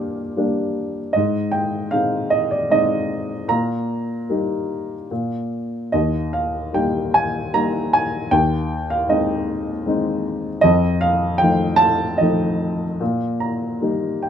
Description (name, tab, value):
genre	classical, lyrical solo piano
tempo	76 BPM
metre	3/4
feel	rubato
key	Eb major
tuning	A4 = 440 Hz
part	dark upright piano	solo	0.0-14.3 s	Eb2 to Bb5	-18 LUFS	equal	none
room	light reverb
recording	close, detailed microphones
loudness	-18 LUFS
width	side -8 dB against mid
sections	0.0-14.3 A section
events	upright piano fill 13.0-14.3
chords	0.0 Bb6; 1.1 Ab; 3.5 Eb/Bb; 5.1 N.C.; 5.9 Eb; 8.3 Ab/Eb; 10.6 F7; 13.0 Eb/Bb